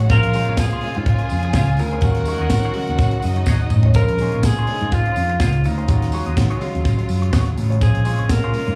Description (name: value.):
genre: disco.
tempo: 124 BPM.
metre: 4/4.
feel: swing 56% on 16ths.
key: Bb minor.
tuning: A4 = 440 Hz.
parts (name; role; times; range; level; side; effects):
warm symphonic violin section; second line; 0.0-3.9 s; Eb4 to Ab5; -32 LUFS; equal; slapback echo.
semi-hollow electric guitar; accompaniment; 0.0-8.7 s; Db4 to Eb5; -35 LUFS; equal; wah, slapback echo.
warm baby grand piano; accompaniment; 0.0-8.8 s; F3 to Gb4; -33 LUFS; equal; slapback echo.
rich studio string section; sustained chords; 0.0-8.8 s; Db3 to Gb4; -34 LUFS; equal; none.
fingered electric bass; bass; 0.0-8.8 s; A1 to Eb3; -22 LUFS; equal; none.
tight funk drum kit; drums; 0.0-8.8 s; hi-hat, kick drum, snare drum, toms; -22 LUFS; equal; none.
breathy alto saxophone; melody; 0.1-8.8 s; Eb4 to Bb4; -27 LUFS; equal; slapback echo, tape echo.
tambourine; percussion; 0.1-8.7 s; none; -43 LUFS; equal; none.
room: little or no reverb.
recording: live gig heard through the venue's PA, club reverb, small room ambience.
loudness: -18 LUFS.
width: mono.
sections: 0.0-4.0 A section; 4.0-8.8 A section.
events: drum fill 3.5-4.0.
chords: 0.1 Bbm9; 2.0 Ebm11; 4.0 Bbm9; 5.9 Ebm11; 7.8 Bbm9.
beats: | 0.10 0.58 1.06 1.55 | 2.03 2.51 2.99 3.48 | 3.96 4.44 4.92 5.41 | 5.89 6.37 6.85 7.33 | 7.82 8.30.